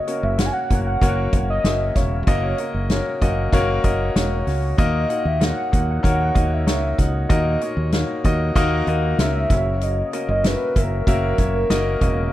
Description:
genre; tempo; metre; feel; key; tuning
piano-driven pop; 96 BPM; 4/4; straight; unclear; A4 = 441 Hz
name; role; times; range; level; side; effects
warm velvety synth lead; melody; 0.0-12.3 s; A#4 to G#5; -25 LUFS; right 1 dB; chorus
warm concert grand piano; accompaniment; 0.0-12.3 s; A#2 to F#5; -23 LUFS; left 2 dB; none
soft-mallet drum kit; drums; 0.1-12.2 s; hi-hat, kick drum, snare drum; -21 LUFS; equal; none
fingered electric bass; bass; 0.2-12.3 s; E1 to D#2; -22 LUFS; equal; none
room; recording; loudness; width
small room reverb; none; -18 LUFS; side -14 dB against mid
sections
0.0-12.3 A section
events
none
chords
0.0 F#; 4.8 D#m; 9.5 F#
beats
0.39 1.01 1.64 | 2.27 2.90 3.53 4.16 | 4.78 5.41 6.04 6.67 | 7.30 7.93 8.55 9.18 | 9.81 10.44 11.07 11.70

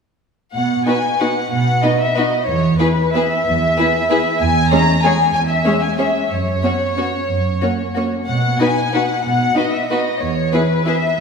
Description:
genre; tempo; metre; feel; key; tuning
classical, orchestral ballroom waltz; 186 BPM; 3/4; uneven beats, rubato; B major; A4 = 437 Hz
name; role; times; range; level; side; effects
warm studio violin section; melody; 0.5-11.2 s; B4 to A#5; -18 LUFS; left 2 dB; none
warm studio cello section; bass; 0.5-11.2 s; E2 to B2; -20 LUFS; right 3 dB; none
rich studio violin section; second line; 0.9-10.9 s; F#4 to C#5; -23 LUFS; left 3 dB; none
dark studio viola section; accompaniment; 0.9-10.9 s; G#3 to E4; -22 LUFS; equal; none
room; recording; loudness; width
wet scoring stage reverb, RT60 1.9 s; heard from further back in the room; -14 LUFS; side -5 dB against mid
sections
0.6-11.2 A section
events
none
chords
0.6 B; 2.5 E5; 4.4 C#m/E; 6.3 F#sus4; 7.3 F#; 8.3 B; 10.2 E5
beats
| 0.55 0.87 1.20 | 1.52 1.84 2.17 | 2.48 2.80 3.15 | 3.46 3.77 4.10 | 4.40 4.71 5.04 | 5.34 5.66 5.99 | 6.31 6.63 6.97 | 7.29 7.62 7.96 | 8.28 8.60 8.94 | 9.25 9.57 9.90 | 10.21 10.53 10.87 | 11.19

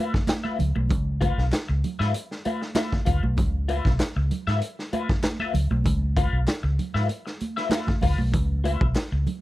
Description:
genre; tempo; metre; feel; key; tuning
funk; 97 BPM; 4/4; straight; Db mixolydian; A4 = 445 Hz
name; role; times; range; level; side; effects
electric guitar at the edge of break-up; accompaniment; 0.0-9.2 s; F4 to F5; -30 LUFS; left 5 dB; wah
raw garage drum kit; drums; 0.1-9.4 s; hi-hat, kick drum, snare drum; -26 LUFS; equal; none
congas; percussion; 0.3-9.4 s; none; -32 LUFS; right 3 dB; none
group handclap; percussion; 0.3-9.1 s; none; -40 LUFS; left 2 dB; none
vintage muted fingered electric bass; bass; 0.6-9.3 s; Cb2 to Ab2; -23 LUFS; equal; none
room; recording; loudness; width
studio ambience; dry, close 1970s-style studio recording; -22 LUFS; side -16 dB against mid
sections
0.0-9.4 A section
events
none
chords
0.0 Db7#9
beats
0.28 | 0.90 1.52 2.14 2.76 | 3.38 4.00 4.62 5.24 | 5.86 6.48 7.10 7.72 | 8.34 8.96

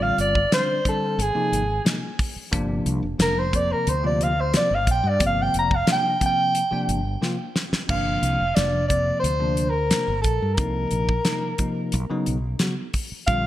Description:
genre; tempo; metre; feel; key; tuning
electric jazz fusion; 89 BPM; 4/4; straight; G minor; A4 = 440 Hz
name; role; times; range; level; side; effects
breathy soprano saxophone; melody; 0.0-13.5 s; Ab4 to Bb5; -23 LUFS; equal; digital delay
bell-like tine electric piano; accompaniment; 0.0-13.5 s; C3 to F#4; -28 LUFS; left 1 dB; analog chorus
mellow fretless electric bass; bass; 0.0-13.5 s; F1 to G2; -26 LUFS; equal; none
damped 70s drum kit; drums; 0.2-13.4 s; crash cymbal, hi-hat, kick drum, snare drum; -24 LUFS; equal; gated reverb
room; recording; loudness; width
moderate plate reverb, RT60 1.9 s, studio reverb; bright 1980s-style digital production; -20 LUFS; side -13 dB against mid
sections
0.0-7.9 A section; 7.9-13.5 B section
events
soprano saxophone solo 0.0-7.9; drum fill 7.2-7.9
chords
0.0 G9sus4; 1.2 Ab; 2.5 Gm7; 10.6 Cm7; 11.9 Badd9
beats
0.51 1.18 1.85 | 2.52 3.19 3.87 4.54 | 5.21 5.88 6.55 7.23 | 7.90 8.57 9.24 9.91 | 10.59 11.26 11.93 12.60 | 13.28

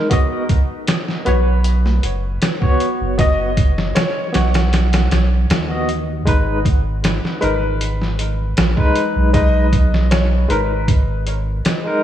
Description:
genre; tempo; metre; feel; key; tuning
trip hop; 78 BPM; 4/4; straight; unclear; A4 = 440 Hz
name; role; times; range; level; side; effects
barky tine electric piano; accompaniment; 0.0-12.0 s; G#3 to D#5; -22 LUFS; left 1 dB; tremolo, vintage 12-bit sampler grit, tape echo
trip hop sampler-style drum kit; drums; 0.1-11.8 s; hi-hat, kick drum, snare drum; -18 LUFS; equal; studio reverb
felt-muted upright piano; melody; 1.3-11.2 s; B4 to F#5; -25 LUFS; left 2 dB; dub echo
soft dub sub bass; bass; 1.3-11.6 s; F#1 to D#2; -17 LUFS; equal; none
room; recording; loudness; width
light reverb, digital ambience; none; -14 LUFS; side -11 dB against mid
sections
0.0-12.0 A section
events
none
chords
0.1 B; 6.3 G#m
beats
| 0.11 0.88 1.65 2.42 | 3.19 3.96 4.73 5.50 | 6.26 7.03 7.80 8.57 | 9.34 10.11 10.88 11.65

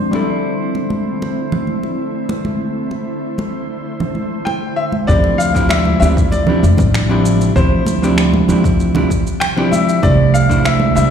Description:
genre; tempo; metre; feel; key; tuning
sunset chillout; 97 BPM; 4/4; straight; unclear; A4 = 442 Hz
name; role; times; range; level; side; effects
hollow-body jazz guitar; accompaniment; 0.0-11.1 s; F3 to C5; -18 LUFS; moving between left 4 dB and right 3 dB; auto-pan, ping-pong delay
ethereal airy pad; sustained chords; 0.0-11.1 s; C3 to C5; -22 LUFS; right 1 dB; ensemble chorus, built-in reverb
drifting glass-harmonics texture; texture; 0.0-5.1 s; C5; -30 LUFS; right 3 dB; chorus, built-in reverb
congas; percussion; 0.1-11.1 s; none; -21 LUFS; right 1 dB; none
bright grand piano; melody; 4.5-11.1 s; C5 to G5; -19 LUFS; left 2 dB; digital delay
upright bass; bass; 5.1-11.1 s; A1 to F2; -16 LUFS; right 1 dB; none
electronic kick drum; drums; 5.1-10.6 s; none; -18 LUFS; left 1 dB; overdrive
electronic shaker and finger snaps; drums; 5.1-11.1 s; none; -24 LUFS; right 1 dB; overdrive
room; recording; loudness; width
moderate plate reverb, RT60 1.3 s; played on a big sound system in a bare room, large studio reverb; -13 LUFS; side -8 dB against mid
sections
0.0-5.1 A section; 5.1-11.1 B section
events
filter sweep on ambient pad 0.0-5.1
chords
0.1 C69; 5.1 Dm11; 10.0 C69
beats
| 0.14 0.76 1.37 1.99 | 2.61 3.23 3.85 4.47 | 5.08 5.70 6.32 6.94 | 7.56 8.18 8.80 9.41 | 10.03 10.65

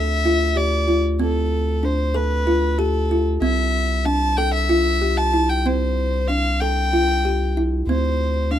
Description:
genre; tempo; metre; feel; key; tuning
contemporary instrumental, chamber music in an uneven meter; 189 BPM (eighths); 7/8; straight; D dorian; A4 = 436 Hz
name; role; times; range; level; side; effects
warm violin; melody; 0.0-8.6 s; A4 to A5; -23 LUFS; left 1 dB; none
kalimba; arpeggios; 0.0-8.6 s; C4 to A4; -22 LUFS; equal; none
round analog bass; bass; 0.0-8.6 s; C2 to D2; -22 LUFS; equal; none
room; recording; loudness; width
little or no reverb; close, detailed microphones; -17 LUFS; side -10 dB against mid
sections
0.0-8.6 A section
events
none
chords
0.0 Dm7; 3.4 Am7/C (rootless); 7.9 D7(no3)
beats
0.24 0.56 0.88 | 1.20 1.52 1.83 2.15 2.47 2.79 3.11 | 3.42 3.74 4.06 4.38 4.70 5.01 5.33 | 5.65 5.97 6.29 6.60 6.92 7.24 7.56 | 7.88 8.20 8.51

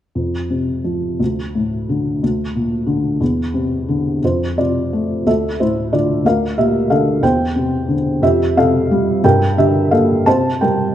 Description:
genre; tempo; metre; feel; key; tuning
classical, lyrical solo piano; 59 BPM (dotted quarters); 6/8; uneven beats, rubato; F major; A4 = 439 Hz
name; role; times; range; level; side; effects
felt-muted upright piano; solo; 0.2-10.9 s; D2 to A5; -14 LUFS; equal; none
room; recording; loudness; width
moderate scoring stage reverb, RT60 1.6 s; dark, warm production; -14 LUFS; side -11 dB against mid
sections
0.2-4.2 A section; 4.2-10.9 B section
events
none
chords
0.2 F5; 1.2 D5; 2.2 Bb/D; 3.2 Cadd9/E; 4.2 F; 5.3 Dsus2; 6.3 Bb/D; 7.2 Cadd9/E; 8.2 Fsus2; 9.2 Gm; 10.3 C5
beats
| 0.16 1.21 | 2.23 3.21 | 4.22 5.26 | 6.25 7.22 | 8.22 9.24 | 10.26

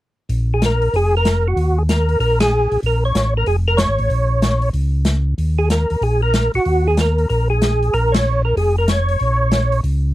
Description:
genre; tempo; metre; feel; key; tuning
soul jazz organ trio; 188 BPM; 4/4; swing 64% on 8ths; Bb minor; A4 = 439 Hz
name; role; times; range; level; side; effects
mellow tonewheel organ; bass; 0.3-10.1 s; F1 to Eb2; -17 LUFS; equal; overdrive, chorus vibrato, slow rotary speaker
open jazz drum kit; drums; 0.3-9.9 s; hi-hat, ride cymbal, snare drum; -21 LUFS; left 1 dB; none
percussive tonewheel organ; melody; 0.5-9.8 s; Gb4 to Db5; -18 LUFS; equal; chorus vibrato, slow rotary speaker
room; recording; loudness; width
little or no reverb; dry, close 1970s-style studio recording; -15 LUFS; side -15 dB against mid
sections
0.3-10.1 A section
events
band accent 2.4, 8.1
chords
0.3 Bb5; 1.6 Eb5; 2.8 Bbm; 5.4 Ebm; 7.9 Bbm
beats
| 0.29 0.60 0.92 1.24 | 1.56 1.88 2.19 2.51 | 2.83 3.15 3.47 3.79 | 4.10 4.42 4.74 5.06 | 5.38 5.69 6.01 6.33 | 6.65 6.97 7.29 7.61 | 7.92 8.24 8.56 8.88 | 9.20 9.52 9.84

